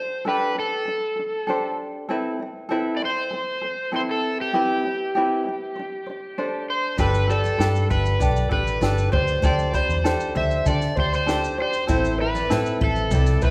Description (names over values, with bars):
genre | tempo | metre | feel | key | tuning
acoustic pop | 98 BPM | 4/4 | straight | G major | A4 = 437 Hz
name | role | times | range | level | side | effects
overdriven slide guitar | melody | 0.0-13.5 s | G4 to E5 | -28 LUFS | equal | none
tenor ukulele | accompaniment | 0.0-13.5 s | C4 to C5 | -28 LUFS | equal | none
picked steel-string acoustic guitar | arpeggios | 7.0-13.5 s | B4 to B5 | -35 LUFS | equal | none
vintage muted fingered electric bass | bass | 7.0-13.5 s | G1 to D3 | -26 LUFS | equal | none
compact cocktail drum kit | drums | 7.0-13.5 s | kick drum, shaker, snare drum | -29 LUFS | equal | none
room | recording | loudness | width
wet recital hall reverb, RT60 1.7 s | recorded in a church or concert hall | -23 LUFS | mono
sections
0.0-7.0 A section; 7.0-13.5 B section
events
none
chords
0.0 D7sus4; 2.1 Amadd9; 4.5 Cmaj7; 5.8 D5; 7.0 Gadd9; 9.1 D7sus4; 11.9 Amadd9